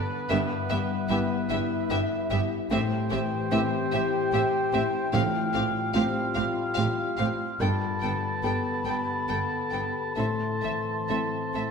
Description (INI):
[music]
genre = cinematic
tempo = 65-76 BPM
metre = 3/4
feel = rubato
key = A minor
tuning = A4 = 440 Hz
[part]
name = mellow hollow silver concert flute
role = second line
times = 0.0-11.7 s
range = E5 to C6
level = -34 LUFS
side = left 1 dB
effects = none
[part]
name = warm oboe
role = second line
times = 0.0-11.7 s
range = B4 to A5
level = -33 LUFS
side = right 2 dB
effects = none
[part]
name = felt-muted upright piano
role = accompaniment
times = 0.0-11.7 s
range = G2 to A4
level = -34 LUFS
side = equal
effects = none
[part]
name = clear French horn section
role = sustained chords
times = 0.0-11.7 s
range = G3 to A4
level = -33 LUFS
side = left 3 dB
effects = none
[part]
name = concert harp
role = arpeggios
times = 0.0-11.7 s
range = G2 to A4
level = -33 LUFS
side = left 8 dB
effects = none
[part]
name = rich studio violin section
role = melody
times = 0.3-11.6 s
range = E5 to G5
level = -35 LUFS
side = left 2 dB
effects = none
[part]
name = warm studio violin section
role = second line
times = 0.3-11.6 s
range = G4 to A4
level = -39 LUFS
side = left 2 dB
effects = none
[part]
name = warm studio viola section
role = accompaniment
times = 0.3-11.6 s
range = B3 to C4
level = -39 LUFS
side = right 1 dB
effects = none
[part]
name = dark studio double bass section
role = bass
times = 0.3-11.6 s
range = G1 to A1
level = -35 LUFS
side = right 4 dB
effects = none
[part]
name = warm studio cello section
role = bass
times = 0.3-11.6 s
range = G2 to A2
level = -33 LUFS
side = right 5 dB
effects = none
[part]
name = timpani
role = percussion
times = 5.1-6.3 s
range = A2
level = -34 LUFS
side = right 4 dB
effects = none
[sound]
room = wet scoring stage reverb, RT60 1.8 s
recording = minimal, uncompressed stereo recording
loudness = -24 LUFS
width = side -5 dB against mid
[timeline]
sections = 0.0-11.7 A section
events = none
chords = 0.3 Em/G; 2.7 Am7; 5.1 Fadd9/A; 7.6 Gadd9; 10.2 Am